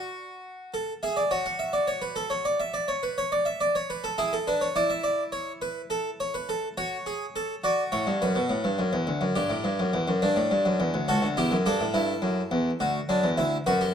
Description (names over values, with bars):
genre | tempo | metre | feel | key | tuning
classical, baroque-style 4-part fugue for harpsichord | 70 BPM (dotted quarters) | 12/8 | straight | D major | A4 = 440 Hz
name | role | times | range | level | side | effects
harpsichord | solo | 0.0-13.9 s | C#2 to F#5 | -24 LUFS | equal | none
room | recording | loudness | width
moderate stone room reverb, RT60 1.1 s | none | -24 LUFS | side -8 dB against mid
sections
0.0-13.9 A section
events
none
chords
0.0 N.C.; 0.7 A; 2.5 D/F#; 4.2 E7(no3); 5.9 A/E; 7.6 D; 9.4 G; 11.1 A7(no3); 12.8 D